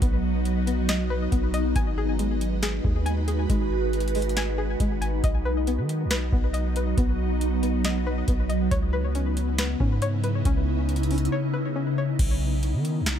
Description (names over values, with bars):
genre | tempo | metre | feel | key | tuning
hip hop, atmospheric cloud-rap | 138 BPM | 4/4 | half-time | B major | A4 = 440 Hz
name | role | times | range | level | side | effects
ethereal airy pad | sustained chords | 0.0-13.2 s | C#3 to B4 | -27 LUFS | equal | ensemble chorus, built-in reverb, phaser, sidechain pumping
string-like resonator pluck | arpeggios | 0.0-12.2 s | G#3 to G#5 | -32 LUFS | left 4 dB | chorus, ping-pong delay
long sustained 808-style bass | bass | 0.0-13.2 s | G#1 to D#3 | -26 LUFS | equal | none
booming analog drum machine | drums | 0.0-13.2 s | crash cymbal, hi-hat, kick drum, snare drum | -26 LUFS | equal | none
room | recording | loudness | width
little or no reverb | none | -22 LUFS | side -9 dB against mid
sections
0.0-12.2 A section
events
break 11.3-12.2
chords
0.0 B; 1.8 G#m7; 5.2 B; 8.7 C#m9; 12.2 Bmaj7